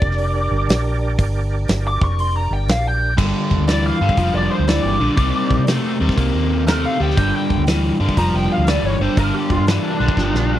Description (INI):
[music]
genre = blues rock power trio and southern rock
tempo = 120 BPM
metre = 4/4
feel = swing 66% on 8ths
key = G minor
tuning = A4 = 440 Hz
[part]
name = lead guitar through a small cranked amp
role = melody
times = 0.0-10.6 s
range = D4 to D6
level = -22 LUFS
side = left 1 dB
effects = wah, overdrive, slapback echo
[part]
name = overdriven tonewheel organ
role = sustained chords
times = 0.0-10.6 s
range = G3 to D5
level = -29 LUFS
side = right 4 dB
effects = slow rotary speaker, chorus vibrato
[part]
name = vintage muted fingered electric bass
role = bass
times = 0.0-10.6 s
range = F1 to C3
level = -20 LUFS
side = equal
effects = none
[part]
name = big rock drum kit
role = drums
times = 0.0-10.5 s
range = crash cymbal, hi-hat, kick drum, snare drum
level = -21 LUFS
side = equal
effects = none
[part]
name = biting overdriven guitar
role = riff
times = 3.2-10.6 s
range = G2 to Bb3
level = -20 LUFS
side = left 1 dB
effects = none
[sound]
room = little or no reverb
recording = dry, close 1970s-style studio recording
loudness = -15 LUFS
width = side -12 dB against mid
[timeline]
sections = 0.0-3.2 A section; 3.2-10.6 B section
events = lead electric guitar solo 0.0-3.2; drum fill 10.2-10.6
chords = 0.0 Gm; 3.2 Gm7; 5.2 Cm7; 7.2 Gm7